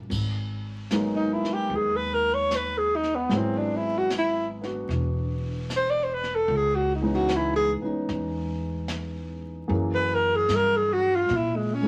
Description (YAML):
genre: jazz ballad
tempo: 75 BPM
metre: 4/4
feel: swing 66% on 8ths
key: G# minor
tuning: A4 = 442 Hz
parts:
  - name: warm grand piano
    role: accompaniment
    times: 0.0-11.9 s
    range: E3 to G#4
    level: -32 LUFS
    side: equal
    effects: none
  - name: upright bass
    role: bass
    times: 0.0-11.9 s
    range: E1 to A#2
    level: -33 LUFS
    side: equal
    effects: none
  - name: jazz brush drum kit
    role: drums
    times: 0.1-11.9 s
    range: brushed snare drum, crash cymbal, hi-hat, kick drum, snare drum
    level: -40 LUFS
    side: equal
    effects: none
  - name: breathy alto saxophone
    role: melody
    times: 1.2-11.9 s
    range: G#3 to D5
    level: -26 LUFS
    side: equal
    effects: none
room: moderate studio reverb, RT60 0.8 s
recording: vinyl crackle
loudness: -26 LUFS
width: mono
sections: 0.1-11.9 A section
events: alto saxophone solo 0.1-11.9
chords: 0.1 G#m9; 3.3 G#7alt; 6.5 C#m7; 9.7 F#9